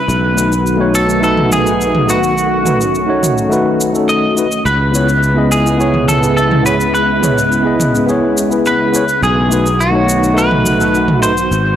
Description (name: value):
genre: sunset chillout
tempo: 105 BPM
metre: 4/4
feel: straight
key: unclear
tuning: A4 = 439 Hz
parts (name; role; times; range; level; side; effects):
- clean electric guitar; melody; 0.0-11.8 s; F#4 to D#5; -16 LUFS; equal; tape echo
- soft string machine; sustained chords; 0.0-11.8 s; B#2 to F#4; -18 LUFS; equal; ensemble chorus
- sustaining fretless electric bass; bass; 0.0-11.8 s; G#1 to C#2; -18 LUFS; equal; none
- electronic shaker and toms; drums; 0.1-11.6 s; none; -20 LUFS; right 1 dB; studio reverb
- bright tine electric piano; accompaniment; 0.3-11.3 s; A3 to D#5; -16 LUFS; moving between left 4 dB and right 4 dB; auto-pan, tape echo
room: light reverb, digital ambience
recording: dry, gritty hardware recording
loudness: -11 LUFS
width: side -10 dB against mid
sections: 0.0-11.8 A section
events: none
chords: 0.1 B7; 4.7 C#m7; 9.2 B7